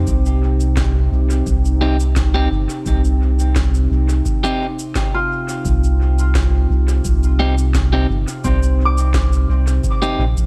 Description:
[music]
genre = ambient dub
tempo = 86 BPM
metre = 4/4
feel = straight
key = C minor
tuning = A4 = 440 Hz
[part]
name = warbly tape-like pad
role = sustained chords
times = 0.0-10.5 s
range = C3 to G5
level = -27 LUFS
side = equal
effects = chorus, built-in reverb
[part]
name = Celtic harp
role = arpeggios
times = 0.0-10.5 s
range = C4 to D6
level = -29 LUFS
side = equal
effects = dub echo
[part]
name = round analog bass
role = bass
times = 0.0-10.5 s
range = G1 to C2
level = -18 LUFS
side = equal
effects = none
[part]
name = electronic cabasa and snare drum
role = drums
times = 0.1-10.5 s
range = none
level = -32 LUFS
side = equal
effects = dub echo
[part]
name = electronic kick drum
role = drums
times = 0.1-10.0 s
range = none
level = -24 LUFS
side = equal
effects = none
[part]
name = electric guitar at the edge of break-up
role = stabs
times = 1.8-10.2 s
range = C4 to G4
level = -26 LUFS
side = equal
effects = dub echo
[sound]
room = digital ambience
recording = none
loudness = -17 LUFS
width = mono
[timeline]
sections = 0.0-10.5 A section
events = none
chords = 0.0 Cm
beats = | 0.07 0.77 1.47 2.16 | 2.86 3.56 4.26 4.95 | 5.65 6.35 7.05 7.74 | 8.44 9.14 9.84

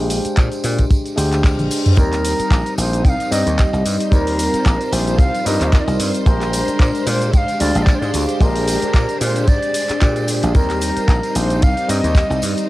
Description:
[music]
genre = nu-disco, nu disco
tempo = 112 BPM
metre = 4/4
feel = swing 55% on 16ths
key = Eb major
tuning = A4 = 440 Hz
[part]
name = tine electric piano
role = accompaniment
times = 0.0-12.7 s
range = G3 to F5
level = -22 LUFS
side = equal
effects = phaser, sidechain pumping, cassette tape
[part]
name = dry thumbed slap bass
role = bass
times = 0.0-12.5 s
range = Bb1 to Bb2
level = -20 LUFS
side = equal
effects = transformer saturation
[part]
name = house drum kit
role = drums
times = 0.1-12.7 s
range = handclaps, hi-hat, shaker, toms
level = -24 LUFS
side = equal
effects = none
[part]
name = tambourine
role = percussion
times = 0.1-12.7 s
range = none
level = -32 LUFS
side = right 3 dB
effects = none
[part]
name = kick drum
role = drums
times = 0.4-12.3 s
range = none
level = -14 LUFS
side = equal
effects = none
[part]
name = reverse cymbal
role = sound effects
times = 1.3-2.0 s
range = none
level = -30 LUFS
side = left 5 dB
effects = none
[part]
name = bright reedy wooden flute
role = melody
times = 2.0-12.4 s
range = Bb4 to G5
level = -23 LUFS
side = equal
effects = vintage 12-bit sampler grit, cassette tape, analog delay
[part]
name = string machine, full ensemble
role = sustained chords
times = 2.0-12.7 s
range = G3 to C5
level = -26 LUFS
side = equal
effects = phaser, ensemble chorus, sidechain pumping, cassette tape
[sound]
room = light reverb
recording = home recording on cassette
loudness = -14 LUFS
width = side -17 dB against mid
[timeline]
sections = 0.0-12.7 A section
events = reverse cymbal 1.3-2.0; drum fill 1.4-2.0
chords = 0.0 Bb13; 2.0 Eb6; 6.3 Bb13; 10.6 Eb6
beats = 0.37 0.91 1.44 | 1.98 2.51 3.05 3.58 | 4.12 4.66 5.19 5.73 | 6.26 6.80 7.33 7.87 | 8.41 8.94 9.48 10.01 | 10.55 11.09 11.62 12.16 | 12.69

